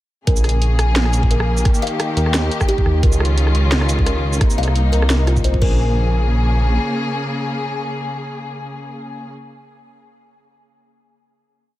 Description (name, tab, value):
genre	half-time drum and bass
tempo	174 BPM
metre	4/4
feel	swing 55% on 16ths, half-time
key	Bb dorian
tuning	A4 = 440 Hz
part	rich studio string section	sustained chords	0.3-9.3 s	C3 to Ab4	-23 LUFS	left 2 dB	vintage 12-bit sampler grit, sidechain pumping
part	kalimba	arpeggios	0.3-5.9 s	F4 to F5	-26 LUFS	left 1 dB	tape echo
part	dark detuned saw bass	bass	0.3-6.8 s	Bb1 to Eb2	-16 LUFS	equal	none
part	drum and bass drum kit	drums	0.3-5.7 s	crash cymbal, hi-hat, rim click, shaker, snare drum	-24 LUFS	right 1 dB	none
part	electronic kick drum	drums	0.3-5.7 s	none	-17 LUFS	equal	none
room	little or no reverb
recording	none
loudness	-15 LUFS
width	side -15 dB against mid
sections	0.3-5.8 drop; 5.8-8.5 final hit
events	drop 0.3-5.8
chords	0.3 Bbm7; 1.7 Eb; 3.0 Dbadd9; 4.4 Cm7; 5.6 Bbm7